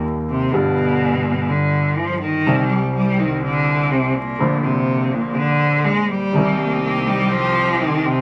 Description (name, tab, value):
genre	tango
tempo	124 BPM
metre	4/4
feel	rubato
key	unclear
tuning	A4 = 439 Hz
part	warm cello	second line	0.0-8.2 s	Bb2 to Bb3	-21 LUFS	equal	none
part	warm concert grand piano	accompaniment	0.0-8.2 s	G1 to G4	-24 LUFS	equal	none
part	clear double bass	bass	0.0-8.2 s	G1 to Eb2	-30 LUFS	equal	none
part	rich chamber string section	stabs	6.4-8.2 s	C4 to G4	-27 LUFS	equal	none
room	moderate studio reverb, RT60 0.5 s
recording	vinyl crackle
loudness	-19 LUFS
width	mono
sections	0.0-8.2 A section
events	cello solo 0.0-8.2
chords	0.0 Eb; 0.5 G7; 2.5 C5; 4.4 Bb; 6.4 Cm